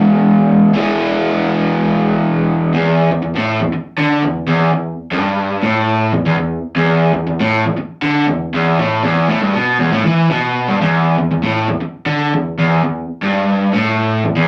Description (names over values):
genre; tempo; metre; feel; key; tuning
rock; 119 BPM; 4/4; straight; E major; A4 = 440 Hz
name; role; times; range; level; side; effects
raw garage guitar; solo; 0.0-14.5 s; E2 to E4; -15 LUFS; equal; overdrive
room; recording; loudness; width
wet small room ambience, RT60 0.5 s; rough rehearsal-room recording, warm saturation; -15 LUFS; mono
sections
0.0-2.7 A section; 2.7-10.8 B section; 10.8-14.5 C section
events
none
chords
0.0 E; 2.7 E5